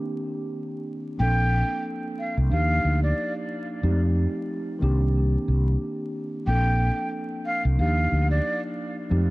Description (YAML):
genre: hip hop, boom-bap hip-hop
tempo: 91 BPM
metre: 4/4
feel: swing 57% on 16ths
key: Bb major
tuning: A4 = 440 Hz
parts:
  - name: mellow tine electric piano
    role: accompaniment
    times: 0.0-9.3 s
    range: Eb3 to A4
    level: -29 LUFS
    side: equal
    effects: slow stereo tremolo, cassette tape, high-pass filter, low-pass filter, dub echo
  - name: breathy mellow silver concert flute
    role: melody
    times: 1.2-8.6 s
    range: D5 to G5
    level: -28 LUFS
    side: equal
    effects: high-pass filter, low-pass filter, dub echo
  - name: mellow fretless electric bass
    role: bass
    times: 1.2-9.3 s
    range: Bb1 to F2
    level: -21 LUFS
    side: equal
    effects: wide subtle chorus
room: little or no reverb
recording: echo-heavy mix, vinyl crackle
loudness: -22 LUFS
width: side -21 dB against mid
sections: 0.0-1.2 A section; 1.2-9.3 B section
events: none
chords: 0.0 Cm9; 1.2 Bbmaj9; 2.5 Ebmaj9; 3.8 F7; 4.8 Cm9; 6.5 Bbmaj9; 7.8 Ebmaj9